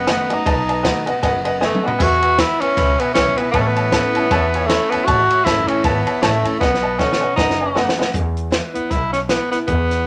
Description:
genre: rockabilly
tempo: 156 BPM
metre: 4/4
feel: swing 58% on 8ths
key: E major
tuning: A4 = 440 Hz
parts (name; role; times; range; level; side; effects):
- clear tenor saxophone; melody; 0.0-10.1 s; A3 to F#4; -20 LUFS; equal; none
- clear upright piano; accompaniment; 0.0-8.1 s; B4 to B5; -24 LUFS; equal; none
- picked steel-string acoustic guitar; accompaniment; 0.0-10.1 s; E2 to F#4; -29 LUFS; equal; none
- upright bass; bass; 0.0-10.1 s; F#1 to E2; -26 LUFS; equal; none
- compact cocktail drum kit; drums; 0.1-10.0 s; hi-hat, kick drum, ride cymbal, snare drum, splash cymbal, toms; -24 LUFS; equal; none
room: moderate club reverb, RT60 0.6 s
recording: none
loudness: -17 LUFS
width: mono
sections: 0.0-8.1 A section; 8.1-10.1 B section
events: drum fill 1.6-2.0, 6.6-8.1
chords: 0.0 B7; 2.0 E; 3.5 A; 6.6 B7; 8.1 E

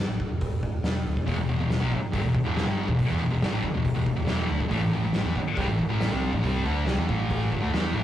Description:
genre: garage rock duo or trio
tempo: 139 BPM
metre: 4/4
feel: straight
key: E minor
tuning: A4 = 440 Hz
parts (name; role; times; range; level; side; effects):
- hollow-body short-scale picked electric bass; bass; 0.0-8.0 s; E1 to E2; -29 LUFS; equal; overdrive
- oversized low-tuned drum kit; drums; 0.2-7.8 s; hi-hat, kick drum, snare drum; -29 LUFS; equal; none
- thick fuzz guitar; riff; 1.3-8.0 s; E2 to E4; -26 LUFS; equal; distortion
room: moderate studio reverb, RT60 0.6 s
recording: rough rehearsal-room recording, tube saturation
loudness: -23 LUFS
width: side -12 dB against mid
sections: 0.0-8.0 A section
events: none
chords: 0.0 Em; 4.7 A5

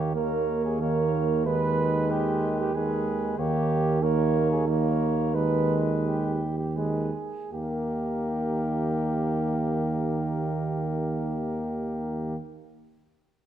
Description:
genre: classical, brass quintet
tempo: 77-95 BPM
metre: 3/4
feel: rubato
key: Eb major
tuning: A4 = 440 Hz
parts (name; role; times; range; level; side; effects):
- warm trumpet; melody; 0.0-12.4 s; Bb4 to Db5; -40 LUFS; left 6 dB; none
- mellow flugelhorn; second line; 0.0-12.4 s; G4 to Cb5; -30 LUFS; right 5 dB; none
- bright trombone; accompaniment; 0.0-12.4 s; Eb3; -32 LUFS; right 2 dB; none
- clear French horn; accompaniment; 0.0-12.4 s; Ab3 to Bb3; -31 LUFS; left 3 dB; none
- warm tuba; bass; 0.0-12.4 s; Eb2; -28 LUFS; right 3 dB; none
room: moderate recital hall reverb, RT60 1.5 s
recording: none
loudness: -24 LUFS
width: side -10 dB against mid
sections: 0.0-7.5 A section; 7.5-12.0 B section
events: slowing down 2.4-7.5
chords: 0.0 Eb7(no3); 1.5 Abm/Eb; 3.4 Eb7; 5.3 Abm/Eb; 7.5 Eb

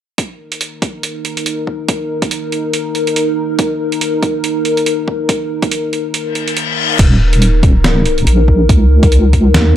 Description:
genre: deep dubstep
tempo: 141 BPM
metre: 4/4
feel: swing 58% on 16ths, half-time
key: unclear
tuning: A4 = 440 Hz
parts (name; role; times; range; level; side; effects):
- dark analog pad; sustained chords; 1.0-9.8 s; Eb4 to Bb4; -17 LUFS; left 1 dB; chorus
- electronic kick drum; drums; 0.2-9.4 s; none; -13 LUFS; equal; overdrive, high-pass filter on kick, small room reverb
- trip hop sampler-style drum kit; drums; 0.2-9.6 s; crash cymbal, hi-hat, snare drum; -18 LUFS; right 2 dB; small room reverb
- reverse cymbal; sound effects; 6.3-7.0 s; none; -17 LUFS; left 8 dB; none
- deep soft wobble bass; bass; 7.0-9.8 s; Eb1 to Eb2; -10 LUFS; equal; chorus
room: light reverb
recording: none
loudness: -12 LUFS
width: side -11 dB against mid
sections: 0.2-7.0 A section; 7.0-9.8 B section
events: reverse cymbal 6.3-7.0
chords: 0.2 Eb5

